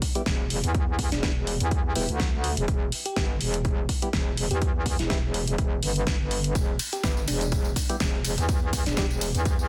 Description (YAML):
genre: bass house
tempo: 124 BPM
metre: 4/4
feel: swing 55% on 16ths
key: E minor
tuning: A4 = 439 Hz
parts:
  - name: big-room dance drum kit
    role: drums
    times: 0.0-9.6 s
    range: hi-hat, snare drum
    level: -33 LUFS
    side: equal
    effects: none
  - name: electronic kick drum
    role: drums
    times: 0.0-9.6 s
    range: none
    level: -29 LUFS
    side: equal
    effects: overdrive
  - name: percussive organ stab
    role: stabs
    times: 0.2-9.0 s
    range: G3 to G4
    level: -39 LUFS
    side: equal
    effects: none
  - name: metallic wobble bass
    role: bass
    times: 0.3-9.7 s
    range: E1 to E2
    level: -30 LUFS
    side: equal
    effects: chorus, overdrive, sidechain pumping
  - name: bell-like FM electric piano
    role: melody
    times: 1.1-9.1 s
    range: D4 to G4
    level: -38 LUFS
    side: equal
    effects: chorus, tremolo, dub echo
  - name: breakbeat sampler-style drum kit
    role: drums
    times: 6.6-9.6 s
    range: hi-hat, ride cymbal, snare drum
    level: -42 LUFS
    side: equal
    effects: high-pass filter on cymbals, high-pass filter on snare, high-pass filter on hats, high-pass filter on room
  - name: tambourine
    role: percussion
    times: 6.6-9.7 s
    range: none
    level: -38 LUFS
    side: equal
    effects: none
room: little or no reverb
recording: dense, heavily limited modern master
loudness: -26 LUFS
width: mono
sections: 0.0-9.7 A section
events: none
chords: 0.0 Em